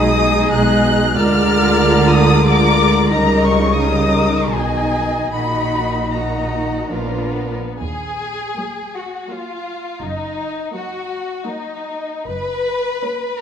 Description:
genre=classical, slow romantic movement for string orchestra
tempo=64-95 BPM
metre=3/4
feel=rubato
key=Eb minor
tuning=A4 = 440 Hz
part: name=muted chamber violin section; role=melody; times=0.0-13.4 s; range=Cb5 to Gb6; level=-22 LUFS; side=left 3 dB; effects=none
part: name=muted chamber violin section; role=second line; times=0.0-13.4 s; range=Cb4 to Eb5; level=-21 LUFS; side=left 2 dB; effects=none
part: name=muted chamber viola section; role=accompaniment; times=0.0-13.4 s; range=Eb3 to F4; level=-19 LUFS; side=right 1 dB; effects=none
part: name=muted chamber cello section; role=bass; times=0.0-12.9 s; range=Eb2 to D3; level=-21 LUFS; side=right 2 dB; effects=none
part: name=muted chamber double bass section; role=bass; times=0.0-12.9 s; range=Gb1 to Eb2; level=-23 LUFS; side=right 2 dB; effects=none
room=wet concert hall reverb, RT60 2.2 s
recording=none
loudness=-15 LUFS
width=side -8 dB against mid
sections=0.0-7.8 A section; 7.8-13.4 B section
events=none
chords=0.0 Abm/Cb; 1.2 Bb7/D; 3.1 Eb7/Db; 4.5 Abm/Cb; 5.3 Ebm/Bb; 6.9 Bb; 7.8 Ebm; 10.0 Ebm/Gb; 12.3 Gb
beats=0.52 | 1.16 1.81 2.46 | 3.11 3.79 4.52 | 5.33 6.12 6.91 | 7.79 8.56 9.29 | 10.01 10.74 11.46 | 12.27 13.02

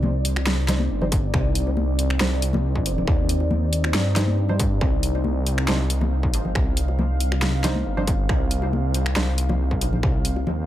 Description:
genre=deep dubstep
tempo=138 BPM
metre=4/4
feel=half-time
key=C minor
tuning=A4 = 441 Hz
part: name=deep dark ambient pad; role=sustained chords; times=0.0-10.7 s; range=C4 to F5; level=-29 LUFS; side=equal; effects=chorus, built-in reverb
part: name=dark detuned saw bass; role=bass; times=0.0-10.7 s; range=G1 to G2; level=-22 LUFS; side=equal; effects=none
part: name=congas and bongos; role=percussion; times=0.0-10.6 s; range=none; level=-29 LUFS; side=left 2 dB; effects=dub echo
part: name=dubstep drum kit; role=drums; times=0.2-10.3 s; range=finger snaps, hi-hat, snare drum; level=-26 LUFS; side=equal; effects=none
part: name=filtered dub chord stab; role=stabs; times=0.7-9.2 s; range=G3 to C5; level=-33 LUFS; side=right 2 dB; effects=lush chorus, dub echo
part: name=electronic kick drum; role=drums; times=1.1-10.1 s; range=none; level=-23 LUFS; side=equal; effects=distortion
room=little or no reverb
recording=faint mains hum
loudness=-20 LUFS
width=side -13 dB against mid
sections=0.0-10.7 A section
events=none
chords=0.0 Cmadd9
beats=0.03 0.47 0.90 | 1.34 1.77 2.21 2.64 | 3.08 3.51 3.94 4.38 | 4.82 5.25 5.68 6.12 | 6.55 6.99 7.42 7.86 | 8.29 8.73 9.16 9.60 | 10.03 10.47

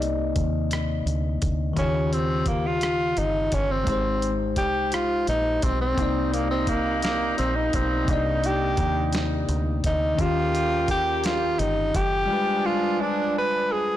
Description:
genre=slow six-eight R&B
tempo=57 BPM (dotted quarters)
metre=6/8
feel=straight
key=C minor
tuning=A4 = 441 Hz
part: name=breathy tenor saxophone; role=melody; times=0.0-14.0 s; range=G3 to B4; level=-24 LUFS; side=equal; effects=none
part: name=bell-like tine electric piano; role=accompaniment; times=0.0-14.0 s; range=C3 to Eb5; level=-28 LUFS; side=left 4 dB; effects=phaser
part: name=deep dub fingered electric bass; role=bass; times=0.0-12.3 s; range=F#1 to Eb2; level=-28 LUFS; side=equal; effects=none
part: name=dusty soul sampler-style drum kit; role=drums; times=0.0-12.1 s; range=hi-hat, kick drum, rim click, snare drum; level=-29 LUFS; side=equal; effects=none
part: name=dark horn section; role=stabs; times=6.0-14.0 s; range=Bb2 to G4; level=-31 LUFS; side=right 2 dB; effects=none
room=light reverb, digital ambience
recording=blown-out, overdriven recording, overdrive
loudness=-21 LUFS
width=side -12 dB against mid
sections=0.0-14.0 A section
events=tenor saxophone solo 0.0-14.0; silent gap 12.3-14.0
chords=0.0 Cm9; 1.8 Eb9; 3.9 Abmaj7; 6.0 Cm9; 10.2 Eb9; 12.3 G7b9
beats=0.71 | 1.76 2.81 | 3.87 4.92 | 5.97 7.03 | 8.08 9.13 | 10.18 11.24 | 12.29 13.34

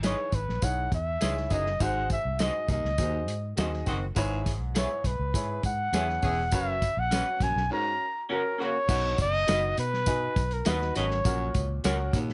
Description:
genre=uptempo 1960s-style soul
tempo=102 BPM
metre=4/4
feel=straight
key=B major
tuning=A4 = 440 Hz
part: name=warm upright piano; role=accompaniment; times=0.0-12.2 s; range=G#2 to G#5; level=-38 LUFS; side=equal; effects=none
part: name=electric guitar through a small old amp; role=stabs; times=0.0-12.0 s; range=C#4 to E5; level=-40 LUFS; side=equal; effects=tape echo
part: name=vintage muted fingered electric bass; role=bass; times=0.0-12.3 s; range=E1 to B2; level=-34 LUFS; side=equal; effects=none
part: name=warm soul drum kit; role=drums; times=0.0-12.3 s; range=crash cymbal, hi-hat, kick drum, snare drum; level=-33 LUFS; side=equal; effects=none
part: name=tambourine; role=percussion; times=0.0-12.3 s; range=none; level=-43 LUFS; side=equal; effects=none
part: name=breathy trumpet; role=melody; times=0.1-11.8 s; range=A#4 to A#5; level=-32 LUFS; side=equal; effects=none
part: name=dark horn section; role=second line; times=1.2-8.8 s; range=C#3 to G#4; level=-38 LUFS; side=equal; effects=none
part: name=breathy baritone saxophone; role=riff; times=1.5-12.3 s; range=D#2 to B2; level=-38 LUFS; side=equal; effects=none
room=light reverb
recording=nothing above 10.9 kHz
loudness=-28 LUFS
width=mono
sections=0.0-8.9 A section; 8.9-12.3 B section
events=none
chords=0.0 Emaj7; 1.8 G#7; 4.2 C#m7/G#; 6.5 F#sus4; 7.7 F#; 8.9 B; 11.3 F#/A#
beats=0.04 0.63 1.22 | 1.81 2.40 2.99 3.58 | 4.17 4.76 5.35 5.94 | 6.53 7.12 7.71 8.30 | 8.89 9.48 10.07 10.66 | 11.25 11.84

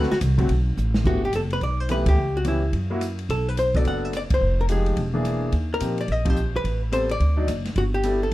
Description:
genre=jazz, small-group swing and bop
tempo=214 BPM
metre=4/4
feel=swing 62% on 8ths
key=G major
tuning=A4 = 440 Hz
part: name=archtop guitar, miked and amplified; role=melody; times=0.0-8.3 s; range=E4 to F#5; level=-26 LUFS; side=left 1 dB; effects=none
part: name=warm concert grand piano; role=accompaniment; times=0.0-8.2 s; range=D3 to D5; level=-27 LUFS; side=left 1 dB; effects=none
part: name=upright bass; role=bass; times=0.0-8.3 s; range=E1 to Bb2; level=-23 LUFS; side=equal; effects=none
part: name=open jazz drum kit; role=drums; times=0.0-8.3 s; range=crash cymbal, hi-hat, kick drum, ride cymbal, rim click, snare drum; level=-28 LUFS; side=equal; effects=none
room=light reverb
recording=none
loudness=-20 LUFS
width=side -16 dB against mid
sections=0.0-1.1 A section; 1.1-8.3 B section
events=hollow-body jazz guitar solo 0.0-1.1; drum fill 0.8; band accent 2.0, 4.3, 6.2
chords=0.0 D7; 1.1 G69; 2.2 C#m7b5; 2.7 F#7; 3.3 Bm7; 4.4 Fm9; 5.0 E7#11; 5.5 Eb69; 6.6 Am9; 7.2 D; 7.8 G69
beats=0.21 0.49 0.77 | 1.05 1.33 1.61 1.89 | 2.17 2.45 2.73 3.01 | 3.29 3.57 3.85 4.13 | 4.41 4.69 4.97 5.25 | 5.53 5.81 6.09 6.37 | 6.65 6.93 7.21 7.49 | 7.77 8.04 8.32

